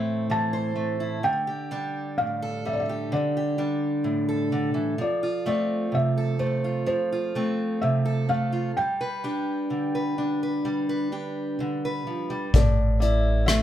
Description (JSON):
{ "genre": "acoustic folk-pop ballad", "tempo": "64 BPM", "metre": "4/4", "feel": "straight", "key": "A minor", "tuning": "A4 = 440 Hz", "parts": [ { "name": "felt-muted upright piano", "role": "melody", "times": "0.0-13.6 s", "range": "A4 to A5", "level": "-28 LUFS", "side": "equal", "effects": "plate reverb" }, { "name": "fingerpicked acoustic archtop guitar", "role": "accompaniment", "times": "0.0-13.6 s", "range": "A2 to C5", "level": "-26 LUFS", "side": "right 1 dB", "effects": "none" }, { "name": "upright bass", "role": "bass", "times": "12.5-13.6 s", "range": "A1", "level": "-22 LUFS", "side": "equal", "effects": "none" }, { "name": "soft brush drum kit", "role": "drums", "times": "12.5-13.6 s", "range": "hi-hat, kick drum, rim click", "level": "-21 LUFS", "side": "left 1 dB", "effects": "none" } ], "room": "wet studio reverb, RT60 0.7 s", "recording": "heard from further back in the room", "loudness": "-23 LUFS", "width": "side -11 dB against mid", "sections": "0.0-12.5 A section; 12.5-13.6 A section", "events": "none", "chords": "0.0 Am; 1.2 Dsus4; 5.0 F; 8.8 G; 12.5 Am" }